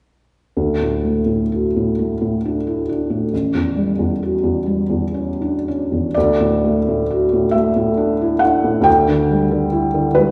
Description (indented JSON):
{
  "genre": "classical, romantic nocturne for solo piano",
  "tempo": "43 BPM (dotted quarters)",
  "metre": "6/8",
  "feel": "uneven beats, rubato",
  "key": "D major",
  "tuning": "A4 = 445 Hz",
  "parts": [
    { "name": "felt-muted upright piano", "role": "solo", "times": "0.6-10.3 s", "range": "A1 to G5", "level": "-18 LUFS", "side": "equal", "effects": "none" }
  ],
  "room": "wet recital hall reverb, RT60 1.3 s",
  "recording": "heard from further back in the room, nothing above 10.5 kHz",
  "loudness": "-18 LUFS",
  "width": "mono",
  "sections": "0.6-6.1 A section; 6.1-10.3 B section",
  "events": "none",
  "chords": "0.6 D; 3.3 A6; 6.1 D; 8.9 Em7/D"
}